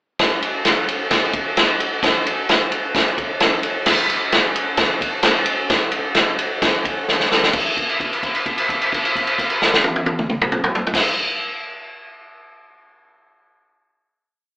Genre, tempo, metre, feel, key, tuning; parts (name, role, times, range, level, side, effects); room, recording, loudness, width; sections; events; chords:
rock; 131 BPM; 4/4; straight
vintage drum kit; drums; 0.2-11.0 s; crash cymbal, kick drum, ride cymbal, snare drum, toms; -16 LUFS; equal
moderate small room reverb, RT60 0.5 s; band playing live in one room, AM radio sound; -16 LUFS; side -28 dB against mid
0.2-7.5 riff; 7.5-11.2 final hit
drum fill 7.1-7.5; held note 7.5-10.9